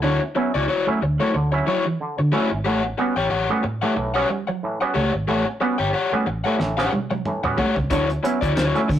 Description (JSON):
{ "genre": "funk", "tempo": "91 BPM", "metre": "4/4", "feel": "swing 56% on 16ths", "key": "unclear", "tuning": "A4 = 440 Hz", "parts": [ { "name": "crunchy overdriven guitar", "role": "accompaniment", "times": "0.0-8.9 s", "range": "E4 to G5", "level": "-23 LUFS", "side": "left 4 dB", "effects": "none" }, { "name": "electric guitar through a small old amp", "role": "riff", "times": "0.0-8.9 s", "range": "E3 to D4", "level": "-26 LUFS", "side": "right 2 dB", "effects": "tube saturation" }, { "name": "auto-wah clav", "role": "stabs", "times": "0.0-8.9 s", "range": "A2 to F#4", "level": "-26 LUFS", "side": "right 3 dB", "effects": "none" }, { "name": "vintage muted fingered electric bass", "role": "bass", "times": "0.0-9.0 s", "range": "G1 to D3", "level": "-24 LUFS", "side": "right 1 dB", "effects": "none" }, { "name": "cloth-damped thuddy drum kit", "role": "drums", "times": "6.6-9.0 s", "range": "hi-hat, kick drum, snare drum, toms", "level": "-27 LUFS", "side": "equal", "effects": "none" } ], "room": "moderate studio reverb, RT60 0.6 s", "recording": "rough rehearsal-room recording, tube saturation", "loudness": "-19 LUFS", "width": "side -10 dB against mid", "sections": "0.0-9.0 A section", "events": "drum fill 6.6-7.9", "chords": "0.0 Dmaj9; 2.7 A13; 7.9 Dmaj9" }